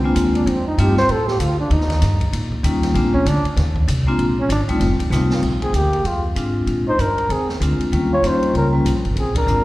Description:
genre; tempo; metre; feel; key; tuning
jazz, small-group swing and bop; 194 BPM; 4/4; swing 61% on 8ths; Bb mixolydian; A4 = 439 Hz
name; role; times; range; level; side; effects
vibraphone with medium mallets; accompaniment; 0.0-9.6 s; G3 to F4; -20 LUFS; left 1 dB; slapback echo
upright bass; bass; 0.0-9.6 s; F1 to Bb2; -19 LUFS; equal; none
open jazz drum kit; drums; 0.2-9.6 s; crash cymbal, hi-hat, kick drum, ride cymbal, snare drum; -27 LUFS; equal; none
mellow trombone; second line; 0.4-9.6 s; Ab3 to C5; -24 LUFS; right 1 dB; slapback echo
breathy flugelhorn; melody; 5.6-9.6 s; F4 to Db5; -21 LUFS; equal; slapback echo
room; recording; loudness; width
light reverb; live gig heard through the venue's PA, recital hall reverb; -16 LUFS; side -18 dB against mid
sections
0.0-5.4 A section; 5.4-9.6 B section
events
trombone solo 0.0-5.4; drum fill 5.1-5.4; band accent 9.3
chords
0.5 F9; 1.7 Eb9; 3.0 Bb9; 3.6 Ebsus2; 4.2 Bbsus2; 4.8 F9; 5.4 Bb9; 7.9 Eb9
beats
0.16 | 0.47 0.78 1.09 1.40 | 1.71 2.02 2.33 2.64 | 2.95 3.26 3.57 3.88 | 4.19 4.50 4.81 5.12 | 5.43 5.74 6.05 6.36 | 6.67 6.98 7.29 7.60 | 7.91 8.22 8.54 8.85 | 9.16 9.47

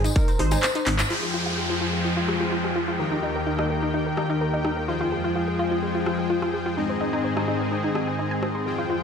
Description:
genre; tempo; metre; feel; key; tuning
progressive house; 127 BPM; 4/4; straight; F minor; A4 = 436 Hz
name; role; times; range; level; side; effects
plucky unison lead; melody; 0.0-0.9 s; Ab4 to C5; -32 LUFS; equal; cassette tape, sidechain pumping, ping-pong delay
analog pluck; arpeggios; 0.0-9.0 s; Eb4 to C6; -28 LUFS; equal; chorus, sidechain pumping, dub echo
dark detuned saw bass; bass; 0.0-1.0 s; Ab1; -24 LUFS; equal; sidechain pumping
deep house drum kit; drums; 0.0-8.5 s; crash cymbal, handclaps, hi-hat, rim click; -30 LUFS; left 1 dB; overdrive
tambourine; percussion; 0.1-1.1 s; none; -36 LUFS; left 6 dB; none
cowbell and congas; percussion; 0.5-1.0 s; none; -34 LUFS; left 2 dB; sidechain pumping on perc
lush unison pad; sustained chords; 1.1-9.0 s; Eb2 to G5; -29 LUFS; right 1 dB; chorus, sidechain pumping
soft supersaw; stabs; 1.1-9.0 s; Ab2 to G5; -26 LUFS; left 3 dB; sidechain pumping, dub echo
downlifter; sound effects; 1.1-4.9 s; none; -31 LUFS; right 1 dB; none
room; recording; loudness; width
moderate lush hall reverb, RT60 1.9 s; none; -22 LUFS; side -7 dB against mid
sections
0.0-1.1 A section; 1.1-9.0 B section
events
drum fill 0.9; band accent 1.0; filter sweep on synth arpeggio sound 1.1-9.0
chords
0.0 Ab; 1.1 Fmadd9; 3.0 Eb; 4.9 Fmadd9; 6.8 Ab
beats
0.16 0.63 | 1.10 1.58 2.05 2.52 | 2.99 3.47 3.94 4.41 | 4.88 5.36 5.83 6.30 | 6.77 7.25 7.72 8.19 | 8.66

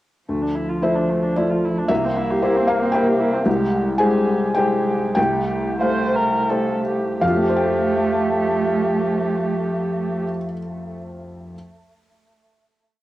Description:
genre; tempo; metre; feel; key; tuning
neoclassical piano and strings; 82-116 BPM; 3/4; rubato; F major; A4 = 440 Hz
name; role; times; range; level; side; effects
muted cello; second line; 0.3-10.2 s; F3 to Bb3; -24 LUFS; right 2 dB; analog delay
felt-muted upright piano; accompaniment; 0.3-11.6 s; C2 to Ab5; -20 LUFS; left 1 dB; none
muted viola; accompaniment; 0.3-10.2 s; A3 to C5; -24 LUFS; right 1 dB; none
room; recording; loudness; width
wet studio reverb, RT60 0.5 s; home recording on cassette; -18 LUFS; side -15 dB against mid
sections
0.3-7.2 theme; 7.2-11.5 final chord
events
slowing down 2.7-7.2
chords
0.3 Dmadd9; 1.9 C7; 3.5 Abmaj7/C; 5.2 Fadd9/C; 7.2 Fadd9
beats
| 0.29 0.83 1.37 | 1.89 2.42 2.94 | 3.46 3.99 4.56 | 5.17 5.82 6.50 | 7.21 7.93 8.65 | 9.36 10.09 10.81

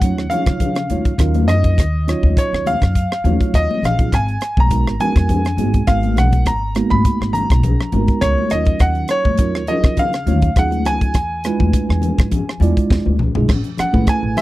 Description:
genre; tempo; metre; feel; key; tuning
electric jazz fusion; 102 BPM; 4/4; swing 54% on 16ths; Eb minor; A4 = 440 Hz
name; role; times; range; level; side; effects
bright concert grand piano; melody; 0.0-14.4 s; Db5 to Cb6; -21 LUFS; equal; slapback echo
tine electric piano; accompaniment; 0.0-14.4 s; Gb3 to D5; -22 LUFS; right 4 dB; wide subtle chorus
upright bass; bass; 0.0-14.3 s; Ab1 to Db3; -18 LUFS; equal; none
crisp fusion drum kit; drums; 0.0-14.4 s; crash cymbal, hi-hat, kick drum, rim click, snare drum, toms; -18 LUFS; equal; none
congas; percussion; 0.3-14.4 s; none; -24 LUFS; left 5 dB; none
room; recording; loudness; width
little or no reverb; dry, close 1970s-style studio recording; -14 LUFS; side -17 dB against mid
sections
0.0-13.5 A section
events
drum fill 12.9-13.5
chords
0.0 Ebm9; 4.1 Abm9; 8.5 Ebm9; 11.2 E7b9; 13.5 Amaj9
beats
0.02 0.61 1.19 | 1.78 2.37 2.96 3.54 | 4.13 4.71 5.30 5.88 | 6.47 7.06 7.64 8.23 | 8.81 9.40 9.98 10.57 | 11.15 11.74 12.32 12.91 | 13.49 14.08

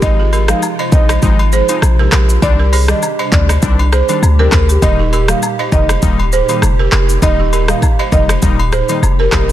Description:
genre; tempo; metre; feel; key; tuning
afrobeats; 100 BPM; 4/4; swing 55% on 16ths; Eb major; A4 = 440 Hz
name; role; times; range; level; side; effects
marimba with medium mallets; melody; 0.0-9.5 s; G4 to F5; -19 LUFS; right 3 dB; digital delay
warm analog keys; accompaniment; 0.0-9.5 s; Eb3 to Eb4; -21 LUFS; left 5 dB; chorus
hollow soft pad; sustained chords; 0.0-9.5 s; Bb2 to G4; -23 LUFS; right 1 dB; ensemble chorus
warm 808-style bass; bass; 0.0-9.5 s; Eb1 to D2; -12 LUFS; equal; none
afro-pop drum kit; drums; 0.0-9.5 s; handclaps, hi-hat, kick drum, rim click, shaker; -15 LUFS; equal; soft clipping on snare
agogo bells and woodblock; percussion; 0.0-9.5 s; none; -23 LUFS; left 4 dB; none
balafon; riff; 0.2-9.4 s; Eb4 to Eb5; -22 LUFS; right 9 dB; digital delay
room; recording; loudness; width
digital ambience; dense, heavily limited modern master; -10 LUFS; side -12 dB against mid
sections
0.0-9.5 A section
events
none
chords
0.0 Ab6; 2.4 Cmadd9; 4.8 Eb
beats
| 0.02 0.62 1.22 1.82 | 2.42 3.02 3.62 4.22 | 4.82 5.42 6.02 6.62 | 7.22 7.82 8.42 9.02

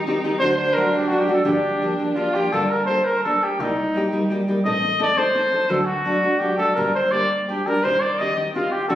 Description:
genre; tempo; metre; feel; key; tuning
mexican folk, mariachi; 170 BPM; 3/4; rubato; G minor; A4 = 442 Hz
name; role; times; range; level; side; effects
clear trumpet; melody; 0.0-9.0 s; Eb4 to Eb5; -20 LUFS; equal; none
dark violin; second line; 0.0-2.5 s; D4 to F4; -25 LUFS; right 3 dB; none
nylon-string guitar; accompaniment; 0.1-9.0 s; G2 to A4; -23 LUFS; left 1 dB; none
dark double bass; bass; 0.4-9.0 s; G1 to D2; -34 LUFS; equal; none
room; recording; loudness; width
wet recital hall reverb, RT60 1.5 s; recorded on a phone in the room, studio reverb; -18 LUFS; side -12 dB against mid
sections
0.0-2.5 A section; 2.5-9.0 A section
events
none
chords
0.4 D; 1.5 Gm7; 2.5 Gmadd9; 3.6 Cm7; 4.6 Adim; 5.7 D; 6.8 Gm; 7.9 Cm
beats
0.05 | 0.40 0.75 1.10 | 1.45 1.81 2.17 | 2.52 2.88 3.24 | 3.59 3.94 4.30 | 4.65 5.00 5.35 | 5.70 6.05 6.41 | 6.77 7.13 7.49 | 7.85 8.21 8.56 | 8.91

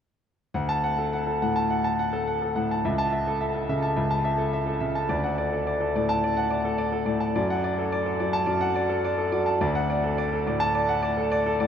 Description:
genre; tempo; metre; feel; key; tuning
classical, virtuoso piano study; 106 BPM; 4/4; rubato; D major; A4 = 439 Hz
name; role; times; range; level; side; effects
clear grand piano; solo; 0.5-11.7 s; C#2 to A5; -23 LUFS; equal; none
room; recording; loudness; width
wet huge ambient reverb, RT60 7.8 s; in a vast, echoing space; -23 LUFS; side -8 dB against mid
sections
0.5-11.7 A section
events
none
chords
0.5 D; 2.8 A/C#; 5.1 D; 7.3 D/F#; 9.6 D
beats
| 0.54 1.13 1.70 2.27 | 2.83 3.40 3.97 4.54 | 5.10 5.67 6.23 6.79 | 7.35 7.91 8.47 9.04 | 9.60 10.17 10.74 11.31

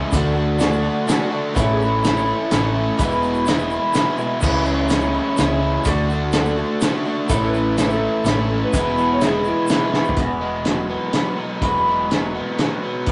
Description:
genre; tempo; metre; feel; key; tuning
folk rock and heartland rock; 125 BPM; 3/4; straight; E mixolydian; A4 = 441 Hz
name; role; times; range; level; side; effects
dark concert grand piano; accompaniment; 0.0-10.2 s; G#4 to A5; -33 LUFS; equal; none
picked twelve-string acoustic guitar; accompaniment; 0.0-13.1 s; E2 to F#4; -25 LUFS; equal; none
bright tonewheel organ; sustained chords; 0.0-13.1 s; G#3 to A4; -38 LUFS; equal; none
overdriven electric guitar; riff; 0.0-13.1 s; E2 to F#4; -26 LUFS; equal; none
hollow-body short-scale fingered electric bass; bass; 0.1-13.1 s; E1 to D2; -28 LUFS; equal; none
cloth-damped thuddy drum kit; drums; 0.1-13.1 s; crash cymbal, hi-hat, kick drum, snare drum, toms; -24 LUFS; equal; none
tube shaker; percussion; 0.1-10.1 s; none; -41 LUFS; equal; none
electric slide guitar; second line; 1.6-2.5, 7.3-9.9 s; E4 to C#5; -28 LUFS; equal; none
room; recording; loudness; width
moderate small room ambience, RT60 0.5 s; rough rehearsal-room recording, warm saturation, nothing above 10.9 kHz; -19 LUFS; mono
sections
0.0-10.2 A section; 10.2-13.1 B section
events
grand piano fill 0.6-1.6; drum fill 9.9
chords
0.1 D; 1.6 A; 3.0 E; 4.4 C#m; 5.9 D; 7.3 A; 8.7 E; 10.2 Eadd9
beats
| 0.12 0.59 1.07 | 1.55 2.03 2.51 | 2.98 3.46 3.94 | 4.42 4.90 5.38 | 5.86 6.34 6.82 | 7.29 7.78 8.26 | 8.73 9.22 9.70 | 10.18 10.66 11.14 | 11.63 12.11 12.59 | 13.07

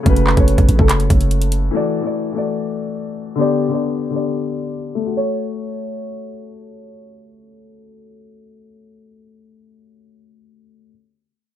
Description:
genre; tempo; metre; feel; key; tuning
hip hop, trap; 144 BPM; 4/4; half-time; F# phrygian; A4 = 440 Hz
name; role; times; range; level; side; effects
dark grand piano; accompaniment; 0.0-10.9 s; C#3 to D5; -20 LUFS; left 3 dB; low-pass filter
warm 808-style bass; bass; 0.1-1.7 s; F#1 to A1; -16 LUFS; equal; none
trap drum kit; drums; 0.1-1.6 s; handclaps, hi-hat, kick drum; -15 LUFS; equal; none
room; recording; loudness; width
light reverb; none; -16 LUFS; side -11 dB against mid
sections
0.0-5.1 A section; 5.1-8.4 B section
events
filter sweep on grand piano 0.0-5.1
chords
0.0 F#m; 1.7 Dadd9; 3.4 G; 5.1 F#m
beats
| 0.06 0.48 0.89 1.31 | 1.73 2.14 2.56 2.98 | 3.39 3.81 4.23 4.64 | 5.06 5.48 5.89 6.31 | 6.73 7.14 7.56 7.98

